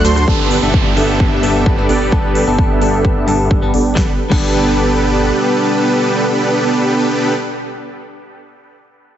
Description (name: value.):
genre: EDM, festival progressive house.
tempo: 130 BPM.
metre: 4/4.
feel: straight.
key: G major.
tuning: A4 = 441 Hz.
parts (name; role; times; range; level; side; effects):
direct-recorded clean electric guitar; accompaniment; 0.0-7.4 s; G2 to A4; -20 LUFS; left 2 dB; phaser, sidechain pumping, dub echo.
dense compressed supersaw; riff; 0.0-7.3 s; A3 to E5; -15 LUFS; right 1 dB; sidechain pumping, low-pass filter, dub echo.
saturated sub bass; bass; 0.0-5.3 s; G1 to D2; -21 LUFS; equal; sidechain pumping.
big-room dance drum kit; drums; 0.0-4.5 s; crash cymbal, hi-hat, ride cymbal, rim click, shaker, snare drum; -26 LUFS; left 2 dB; overdrive.
lush unison pad; sustained chords; 1.1-7.0 s; G3 to B4; -23 LUFS; equal; chorus, vintage 12-bit sampler grit, sidechain pumping.
electronic kick drum; drums; 0.3-4.5 s; none; -15 LUFS; equal; overdrive.
downlifter; sound effects; 0.3-4.0 s; none; -24 LUFS; right 3 dB; none.
room: moderate lush hall reverb, RT60 2.1 s.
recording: heavily compressed radio sound, multiband compression, nothing above 7.9 kHz.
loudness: -12 LUFS.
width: side -10 dB against mid.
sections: 0.3-4.0 A section; 4.0-7.7 B section.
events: filter sweep on supersaw synth 0.3-4.0; filter sweep on sub bass 0.3-4.0.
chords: 0.3 Gadd9.